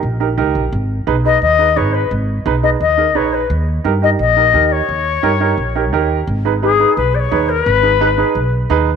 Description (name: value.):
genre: latin.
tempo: 173 BPM.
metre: 4/4.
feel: straight.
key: unclear.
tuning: A4 = 439 Hz.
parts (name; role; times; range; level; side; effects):
upright bass; bass; 0.0-9.0 s; G#1 to G2; -18 LUFS; equal; none.
warm upright piano; accompaniment; 0.2-8.9 s; D#4 to B4; -18 LUFS; right 10 dB; none.
bright reedy bansuri; melody; 1.3-8.5 s; G#4 to D#5; -15 LUFS; left 9 dB; none.
room: moderate echo chamber reverb, RT60 2.1 s.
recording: 1960s-style stereo with parts hard left and right.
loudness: -12 LUFS.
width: side -6 dB against mid.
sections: 0.0-6.3 A section; 6.3-9.0 B section.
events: bansuri solo 6.3-9.0.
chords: 0.0 D#7; 0.7 G#m; 3.5 D#7; 6.3 G#m.